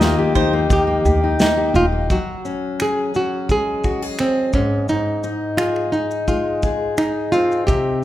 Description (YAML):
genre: acoustic pop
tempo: 86 BPM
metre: 4/4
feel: straight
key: Ab major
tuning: A4 = 443 Hz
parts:
  - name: nylon-string guitar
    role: melody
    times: 0.0-8.0 s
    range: C4 to Ab4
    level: -20 LUFS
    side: right 1 dB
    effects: none
  - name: fingerpicked steel-string acoustic guitar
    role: accompaniment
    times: 0.0-8.0 s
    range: Ab2 to Ab4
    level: -21 LUFS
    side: left 3 dB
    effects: none
  - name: bowl-back mandolin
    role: arpeggios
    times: 0.0-0.5 s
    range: C5 to Eb5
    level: -26 LUFS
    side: right 6 dB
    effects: none
  - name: upright bass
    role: bass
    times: 0.0-2.1 s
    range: Eb1 to Eb2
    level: -22 LUFS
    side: equal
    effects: none
  - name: modern studio drum kit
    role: drums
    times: 0.0-7.8 s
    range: finger snaps, kick drum, shaker, snare drum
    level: -22 LUFS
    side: equal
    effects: none
room: moderate recital hall reverb, RT60 1.5 s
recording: recorded in a church or concert hall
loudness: -16 LUFS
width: side -13 dB against mid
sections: 0.0-2.1 A section; 2.1-8.0 B section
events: none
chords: 0.0 Eb; 2.1 Gbsus2; 4.5 Ab5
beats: 0.00 0.69 1.39 | 2.09 2.79 3.49 4.18 | 4.88 5.58 6.28 6.98 | 7.68